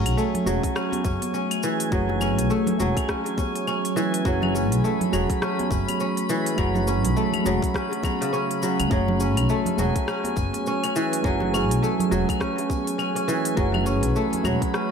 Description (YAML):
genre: organic downtempo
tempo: 103 BPM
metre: 4/4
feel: swing 59% on 16ths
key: F# minor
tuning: A4 = 438 Hz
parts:
  - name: muted felt-like synth keys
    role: accompaniment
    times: 0.0-14.9 s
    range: A3 to C#5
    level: -28 LUFS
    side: right 3 dB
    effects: chorus, sidechain pumping, ping-pong delay
  - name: warbly tape-like pad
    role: sustained chords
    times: 0.3-14.9 s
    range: F#3 to B4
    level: -30 LUFS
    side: right 1 dB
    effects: chorus, built-in reverb, phaser, sidechain pumping
  - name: kora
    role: arpeggios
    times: 0.0-14.9 s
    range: C#3 to C#4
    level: -26 LUFS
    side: equal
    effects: vintage 12-bit sampler grit, ping-pong delay
  - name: upright bass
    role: bass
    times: 0.0-14.5 s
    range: E1 to C#2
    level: -26 LUFS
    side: left 1 dB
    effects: sidechain pumping
  - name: drifting glass-harmonics texture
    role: texture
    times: 0.0-14.9 s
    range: G#5 to B5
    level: -34 LUFS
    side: left 1 dB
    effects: chorus, built-in reverb
  - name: organic electronic drum kit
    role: drums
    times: 0.1-14.9 s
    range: cabasa, claves, hi-hat, rim click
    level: -32 LUFS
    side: left 2 dB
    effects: none
  - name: congas and bongos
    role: percussion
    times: 0.3-14.4 s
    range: none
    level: -33 LUFS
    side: right 2 dB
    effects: none
  - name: electronic kick drum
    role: drums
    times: 0.6-14.7 s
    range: none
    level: -27 LUFS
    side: left 1 dB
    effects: none
room: light reverb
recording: none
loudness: -21 LUFS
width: side -6 dB against mid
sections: 0.0-14.9 A section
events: none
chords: 0.0 F#madd9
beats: 0.17 0.76 1.34 | 1.92 2.50 3.09 3.67 | 4.25 4.83 5.42 6.00 | 6.58 7.17 7.75 8.33 | 8.91 9.49 10.08 10.66 | 11.24 11.83 12.41 12.99 | 13.57 14.16 14.74